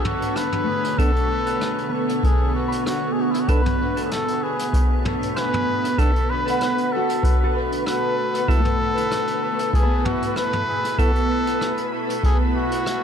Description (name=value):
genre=ambient dub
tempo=96 BPM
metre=4/4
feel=swing 54% on 16ths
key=B minor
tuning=A4 = 442 Hz
part: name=trumpet with cup mute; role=melody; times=0.0-13.0 s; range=E4 to B4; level=-24 LUFS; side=left 1 dB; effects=tape echo
part: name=soft additive organ-like pad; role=sustained chords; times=0.0-13.0 s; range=B2 to C#5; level=-26 LUFS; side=right 1 dB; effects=ensemble chorus, built-in reverb, vintage 12-bit sampler grit
part: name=concert harp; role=arpeggios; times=0.0-12.9 s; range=A3 to B5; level=-30 LUFS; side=left 3 dB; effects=tape echo
part: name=vintage brush drum kit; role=drums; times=0.0-13.0 s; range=hi-hat, rim click, toms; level=-31 LUFS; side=equal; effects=dub echo
part: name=wind-like tuned noise texture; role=texture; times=0.0-13.0 s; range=B4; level=-32 LUFS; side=left 1 dB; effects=built-in reverb
part: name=percussive tonewheel organ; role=stabs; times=1.0-11.1 s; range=B3 to A4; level=-31 LUFS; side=right 3 dB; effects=overdrive, stopped rotary speaker, dub echo
part: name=electronic kick drum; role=drums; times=1.0-12.4 s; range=none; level=-20 LUFS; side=equal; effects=overdrive
room=light reverb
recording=echo-heavy mix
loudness=-19 LUFS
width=side -8 dB against mid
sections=0.0-13.0 A section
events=none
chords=0.0 Bm7; 8.5 Esus4/B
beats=0.36 | 0.99 1.61 2.24 2.86 | 3.49 4.11 4.74 5.36 | 5.99 6.61 7.24 7.86 | 8.49 9.11 9.74 10.36 | 10.99 11.61 12.24 12.86